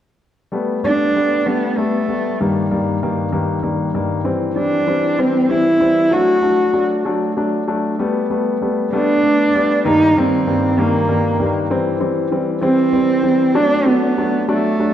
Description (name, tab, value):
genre	pop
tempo	64 BPM (dotted quarters)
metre	6/8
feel	straight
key	G major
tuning	A4 = 440 Hz
part	clear grand piano	accompaniment	0.5-14.9 s	G2 to D4	-18 LUFS	left 2 dB	none
part	dark cello	melody	0.8-14.9 s	G3 to F#4	-16 LUFS	right 1 dB	digital delay
room	wet concert hall reverb, RT60 2.0 s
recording	dark, warm production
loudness	-14 LUFS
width	side -10 dB against mid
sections	0.5-8.0 A section; 8.0-14.9 B section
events	none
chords	0.5 Gadd9; 2.4 Eb/G; 4.2 C; 6.1 D; 8.0 Gadd9; 9.9 Eb/G; 11.7 C; 13.6 D